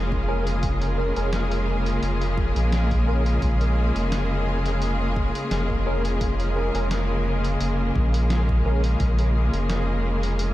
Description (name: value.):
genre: ambient dub.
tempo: 86 BPM.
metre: 4/4.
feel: swing 54% on 16ths.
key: Bb minor.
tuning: A4 = 439 Hz.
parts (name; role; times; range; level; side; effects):
rich symphonic string section; sustained chords; 0.0-10.5 s; Db3 to Ab4; -26 LUFS; left 1 dB; none.
warm sub bass; bass; 0.0-10.5 s; F1 to Bb1; -23 LUFS; equal; none.
electronic kick drum; drums; 0.1-9.2 s; none; -28 LUFS; equal; none.
barky tine electric piano; stabs; 0.3-8.8 s; Db4 to Bb4; -33 LUFS; right 1 dB; overdrive, ensemble chorus, dub echo.
lo-fi sampler-style drum kit; drums; 0.5-10.5 s; hi-hat, snare drum; -35 LUFS; equal; overdrive, dub echo.
room: light reverb.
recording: none.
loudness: -21 LUFS.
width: side -15 dB against mid.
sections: 0.0-10.5 A section.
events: none.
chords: 0.0 Bbm7.